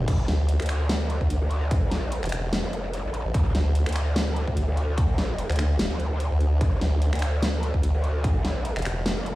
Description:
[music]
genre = heavy wobble dubstep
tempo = 147 BPM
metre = 4/4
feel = swing 54% on 16ths, half-time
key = D minor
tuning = A4 = 443 Hz
[part]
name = formant-sweep wobble bass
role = bass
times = 0.0-9.2 s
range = E1 to D2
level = -23 LUFS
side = equal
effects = chorus, overdrive
[part]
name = growl bass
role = bass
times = 0.1-9.4 s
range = F1 to D2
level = -25 LUFS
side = equal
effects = chorus, overdrive
[part]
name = dubstep drum kit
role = drums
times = 0.1-9.3 s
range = crash cymbal, finger snaps, hi-hat, snare drum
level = -30 LUFS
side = equal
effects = none
[part]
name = electronic kick drum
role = drums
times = 0.1-8.3 s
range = none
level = -25 LUFS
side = equal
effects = none
[sound]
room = light reverb, digital ambience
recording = played on a big sound system in a bare room, stone room reverb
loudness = -22 LUFS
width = side -17 dB against mid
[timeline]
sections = 0.0-9.4 A section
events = none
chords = none

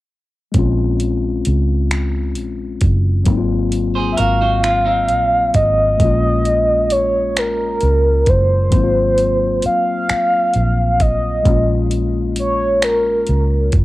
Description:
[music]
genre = slow six-eight R&B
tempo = 44 BPM (dotted quarters)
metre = 6/8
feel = straight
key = Bb minor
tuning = A4 = 440 Hz
[part]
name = mellow tine electric piano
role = accompaniment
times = 0.5-13.8 s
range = Gb3 to F4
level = -22 LUFS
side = left 6 dB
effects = cassette tape
[part]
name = smooth R&B drum kit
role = drums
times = 0.5-13.8 s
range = finger snaps, hi-hat, kick drum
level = -18 LUFS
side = equal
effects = cassette tape
[part]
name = vintage muted fingered electric bass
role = bass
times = 0.6-13.8 s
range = Gb1 to Db2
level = -18 LUFS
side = equal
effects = transformer saturation
[part]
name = clean electric guitar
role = second line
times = 4.0-6.0 s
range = C4 to C5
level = -25 LUFS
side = right 5 dB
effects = cassette tape
[part]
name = mellow horn-like synth lead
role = melody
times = 4.1-13.7 s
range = Bb4 to F5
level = -16 LUFS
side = right 1 dB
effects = chorus, tremolo
[sound]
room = little or no reverb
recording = home recording on cassette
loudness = -14 LUFS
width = side -17 dB against mid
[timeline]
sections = 0.5-6.0 A section; 6.0-13.8 B section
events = none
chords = 0.5 Bbm9; 3.3 Ab13; 6.0 Bbm7; 8.7 Ab13; 11.4 Bbm7

